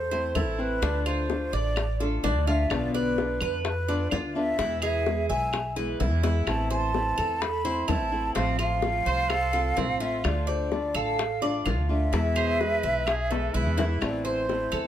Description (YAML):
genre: latin, Cuban son and guajira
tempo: 127 BPM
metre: 4/4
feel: straight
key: A harmonic minor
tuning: A4 = 438 Hz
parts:
  - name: mellow hollow concert flute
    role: melody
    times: 0.0-14.9 s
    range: A4 to B5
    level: -29 LUFS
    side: right 1 dB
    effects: none
  - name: Cuban tres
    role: arpeggios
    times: 0.0-14.9 s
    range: C4 to E5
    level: -32 LUFS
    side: right 2 dB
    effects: none
  - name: upright bass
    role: bass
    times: 0.0-14.9 s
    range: A1 to F2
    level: -29 LUFS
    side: right 1 dB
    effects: none
  - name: flamenco guitar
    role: accompaniment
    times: 0.1-14.9 s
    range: B2 to F4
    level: -32 LUFS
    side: left 2 dB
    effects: none
  - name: bongos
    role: percussion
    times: 0.1-14.9 s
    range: none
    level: -33 LUFS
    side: left 6 dB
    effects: none
  - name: claves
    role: percussion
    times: 0.4-14.9 s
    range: none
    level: -36 LUFS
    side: right 4 dB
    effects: none
  - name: bright trumpet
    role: second line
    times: 9.1-14.0 s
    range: G#4 to C5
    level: -35 LUFS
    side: right 5 dB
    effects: none
room: light reverb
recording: none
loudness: -24 LUFS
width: side -11 dB against mid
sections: 0.0-14.0 A section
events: drum fill 6.2, 13.3-14.0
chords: 0.0 Am; 0.8 Dm; 2.7 Bdim; 4.6 E; 6.5 Am; 8.4 F/A; 10.2 Dm; 12.1 E; 14.0 Am